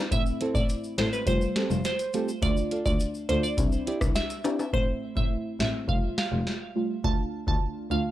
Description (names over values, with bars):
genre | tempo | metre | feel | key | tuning
dancehall | 104 BPM | 4/4 | straight | A minor | A4 = 440 Hz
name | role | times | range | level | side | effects
deep mellow chord stab | accompaniment | 0.0-8.1 s | G3 to F4 | -31 LUFS | equal | chorus
glassy wavetable pluck | melody | 0.1-8.0 s | B4 to A5 | -32 LUFS | right 2 dB | chorus, tape echo
rich double bass | bass | 0.1-8.0 s | F1 to D2 | -31 LUFS | equal | none
booming analog drum machine | drums | 0.1-7.7 s | hi-hat, kick drum, rim click, snare drum | -28 LUFS | equal | none
tube shaker and timbales | percussion | 0.1-4.7 s | none | -37 LUFS | left 3 dB | none
nylon-string guitar | arpeggios | 0.4-4.6 s | C4 to D5 | -31 LUFS | right 3 dB | none
room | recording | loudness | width
small room ambience | dry, gritty hardware recording, cassette tape | -25 LUFS | side -13 dB against mid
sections
0.0-4.7 A section; 4.7-8.1 B section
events
hi-hats muted 4.7-8.1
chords
0.1 Am; 1.3 Fadd9; 2.4 Dm; 3.6 Cadd9; 4.7 Am; 5.9 Fadd9; 7.0 Dm